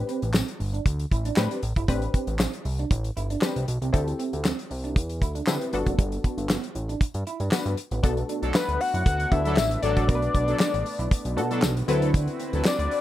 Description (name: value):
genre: early-eighties boogie funk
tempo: 117 BPM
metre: 4/4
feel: straight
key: unclear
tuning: A4 = 440 Hz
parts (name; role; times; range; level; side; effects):
- funky polysynth comp; accompaniment; 0.0-12.7 s; B3 to B4; -29 LUFS; left 3 dB; chorus
- fat analog bass; bass; 0.0-12.9 s; F#1 to D3; -27 LUFS; equal; none
- electric guitar at the edge of break-up; riff; 0.1-12.9 s; G3 to F#4; -34 LUFS; right 6 dB; lush chorus
- damped 70s drum kit; drums; 0.1-13.0 s; handclaps, hi-hat, kick drum, snare drum; -25 LUFS; equal; gated reverb
- tambourine; percussion; 0.3-12.8 s; none; -36 LUFS; left 8 dB; none
- chorused pulse-width pad; sustained chords; 8.0-13.0 s; D3 to B4; -36 LUFS; right 1 dB; wide subtle chorus
- analog synth brass; second line; 8.4-12.6 s; F#3 to A4; -30 LUFS; equal; chorus
- fat analog lead; melody; 8.6-13.0 s; B4 to F#5; -26 LUFS; left 3 dB; chorus
room: little or no reverb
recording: none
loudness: -23 LUFS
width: side -14 dB against mid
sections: 0.0-8.0 A section; 8.0-13.0 B section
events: none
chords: 0.0 Am11; 3.9 D9sus4; 5.7 Gmaj9; 8.0 Bm7; 11.9 D13